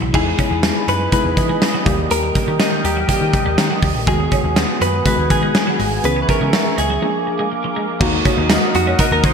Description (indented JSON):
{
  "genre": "1980s-style pop",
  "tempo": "122 BPM",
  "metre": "4/4",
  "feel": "straight",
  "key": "unclear",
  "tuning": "A4 = 440 Hz",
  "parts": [
    { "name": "warm analog keys", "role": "accompaniment", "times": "0.0-9.3 s", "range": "C#3 to G#4", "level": "-23 LUFS", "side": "left 2 dB", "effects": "chorus" },
    { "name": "twelve-string electric guitar", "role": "riff", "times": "0.0-9.1 s", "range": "E#3 to E4", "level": "-26 LUFS", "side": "right 3 dB", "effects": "lush chorus, ping-pong delay" },
    { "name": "vintage muted picked electric bass", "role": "bass", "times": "0.0-9.3 s", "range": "G#1 to E3", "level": "-22 LUFS", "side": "equal", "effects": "none" },
    { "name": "sweeping resonant pad", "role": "sustained chords", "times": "0.1-9.3 s", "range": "B3 to D#6", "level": "-24 LUFS", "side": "equal", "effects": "chorus" },
    { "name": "big rock drum kit", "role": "drums", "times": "0.1-9.3 s", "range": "crash cymbal, hi-hat, kick drum, snare drum, tambourine", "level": "-18 LUFS", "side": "equal", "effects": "gated reverb" },
    { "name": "direct-recorded clean electric guitar", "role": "melody", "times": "0.2-9.3 s", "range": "D#4 to C5", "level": "-21 LUFS", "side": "equal", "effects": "wide subtle chorus" }
  ],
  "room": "moderate lush hall reverb, RT60 2.1 s",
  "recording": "bright 1980s-style digital production, faint mains hum",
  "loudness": "-14 LUFS",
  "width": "side -6 dB against mid",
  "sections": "0.1-8.0 A section; 8.0-9.3 B section",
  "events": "break 7.0-8.0",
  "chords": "0.1 Emaj7; 1.9 D#; 4.1 G#m7/D#; 6.0 C#m7; 7.0 A#7; 8.0 Ebm"
}